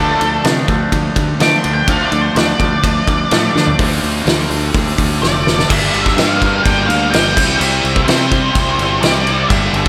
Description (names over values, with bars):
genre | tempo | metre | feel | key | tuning
quiet-loud alternative rock | 126 BPM | 4/4 | straight | unclear | A4 = 445 Hz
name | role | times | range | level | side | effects
octave-fuzz lead guitar | melody | 0.0-9.9 s | A4 to D6 | -20 LUFS | equal | distortion, slapback echo
twangy electric guitar | arpeggios | 0.0-3.8 s | D3 to A4 | -23 LUFS | equal | slapback echo, tape echo
distorted electric guitar | riff | 0.0-9.9 s | G2 to E4 | -24 LUFS | equal | distortion
fuzz guitar | riff | 0.0-9.9 s | G2 to E4 | -24 LUFS | equal | distortion, slapback echo
growling fingered electric bass | bass | 0.0-9.9 s | F1 to D3 | -22 LUFS | equal | overdrive
loose indie drum kit | drums | 0.2-9.9 s | crash cymbal, hi-hat, kick drum, ride cymbal, snare drum, toms | -18 LUFS | equal | none
room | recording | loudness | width
moderate scoring stage reverb, RT60 1.5 s, studio ambience | big arena sound | -14 LUFS | mono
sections
0.0-3.8 A section; 3.8-5.7 B section; 5.7-9.9 C section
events
lead electric guitar solo 0.0-3.8; drum fill 3.6, 5.2-5.7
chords
0.0 Dm; 5.7 Gm; 7.4 C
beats
0.45 0.93 1.40 | 1.88 2.36 2.84 3.31 | 3.79 4.27 4.75 5.22 | 5.70 6.18 6.65 7.13 | 7.60 8.08 8.55 9.03 | 9.50